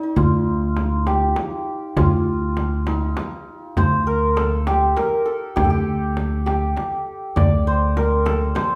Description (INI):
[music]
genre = Persian modal ensemble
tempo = 67 BPM (dotted quarters)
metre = 6/8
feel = straight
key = D dastgah shur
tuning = A4 = 438 Hz
[part]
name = santur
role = melody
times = 0.0-8.8 s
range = Eb4+45c to D5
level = -24 LUFS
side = equal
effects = none
[part]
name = upright bass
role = bass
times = 0.2-8.5 s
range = D2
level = -23 LUFS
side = equal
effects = none
[part]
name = frame drum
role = percussion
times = 0.2-8.7 s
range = none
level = -28 LUFS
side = equal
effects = none
[part]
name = tombak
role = percussion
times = 0.2-8.7 s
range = none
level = -27 LUFS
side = equal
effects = none
[sound]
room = wet large studio reverb, RT60 0.9 s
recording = band playing live in one room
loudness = -20 LUFS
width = mono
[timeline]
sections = 0.2-8.8 A section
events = none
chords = none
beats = | 0.17 1.07 | 1.97 2.87 | 3.77 4.67 | 5.57 6.47 | 7.37 8.26